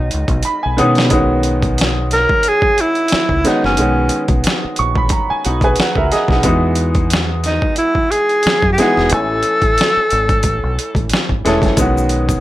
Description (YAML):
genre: R&B, neo-soul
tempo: 90 BPM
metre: 4/4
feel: swing 54% on 16ths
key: B major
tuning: A4 = 440 Hz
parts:
  - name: breathy tenor saxophone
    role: melody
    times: 0.0-11.1 s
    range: C#4 to A#4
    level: -15 LUFS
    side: equal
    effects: slapback echo
  - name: bright grand piano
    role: accompaniment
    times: 0.0-12.4 s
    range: D#3 to C#6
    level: -18 LUFS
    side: equal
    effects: none
  - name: deep dub fingered electric bass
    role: bass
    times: 0.0-12.4 s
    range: E1 to B2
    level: -18 LUFS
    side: equal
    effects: none
  - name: boom bap sampler-style drum kit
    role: drums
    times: 0.1-12.4 s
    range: hi-hat, kick drum, snare drum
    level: -17 LUFS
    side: equal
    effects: overdrive
  - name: maracas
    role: percussion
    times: 11.8-12.4 s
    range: none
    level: -29 LUFS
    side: left 7 dB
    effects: none
room: light reverb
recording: none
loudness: -12 LUFS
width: side -15 dB against mid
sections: 0.0-1.1 A section; 1.1-12.4 A section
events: grand piano fill 0.1-1.1, 4.4-6.4; drum fill 0.4-1.1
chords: 0.0 B69; 6.4 Emaj9; 9.1 Amaj7; 11.8 B69